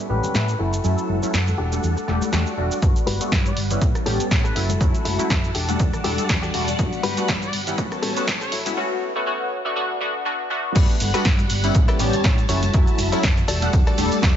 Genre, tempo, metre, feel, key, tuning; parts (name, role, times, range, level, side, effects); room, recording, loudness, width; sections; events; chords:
filtered disco house; 121 BPM; 4/4; swing 56% on 16ths; A4 = 438 Hz
funky polysynth comp; accompaniment; 0.0-14.4 s; F#3 to F#5; -25 LUFS; left 1 dB; chorus, phaser, sidechain pumping, low-pass filter
string machine, full ensemble; sustained chords; 0.0-14.4 s; G3 to E6; -30 LUFS; equal; ensemble chorus, sidechain pumping, low-pass filter
brilliant trumpet section; melody; 0.1-8.5 s; B4 to D5; -35 LUFS; left 2 dB; vintage 12-bit sampler grit, sidechain pumping, low-pass filter, ping-pong delay
direct-recorded clean electric guitar; riff; 0.1-14.4 s; C#4 to D5; -30 LUFS; left 4 dB; harmonic tremolo, sidechain pumping, low-pass filter
hollow-body short-scale fingered electric bass; bass; 0.1-14.4 s; E1 to A2; -25 LUFS; equal; sidechain pumping, low-pass filter
congas and tambourine; percussion; 0.1-14.3 s; -34 LUFS; left 2 dB
punchy analog drum machine; drums; 0.2-14.3 s; crash cymbal, hi-hat, rim click, shaker, snare drum; -26 LUFS; right 1 dB; sidechain pumping on perc, sidechain pumping on hats, sidechain pumping on cymbals
electronic kick drum; drums; 2.8-14.3 s; -20 LUFS; equal
light reverb, digital ambience; high-pass filter, nothing above 7.7 kHz; -18 LUFS; side -10 dB against mid
0.0-2.8 A section; 2.8-10.8 B section; 10.8-14.4 C section
filter sweep 0.0-2.8, 2.8-10.8; build-up 2.8-10.8; drop 10.8-14.4
0.0 A7; 0.6 F#m7; 1.6 Em11; 2.8 Gmaj7; 3.8 A7; 4.6 F#m7; 5.6 Em11; 6.8 Gmaj7; 7.8 A7; 8.5 F#m7; 9.5 Bm7/A; 10.8 Gmaj7; 11.7 A7; 12.5 F#m7; 13.5 Em11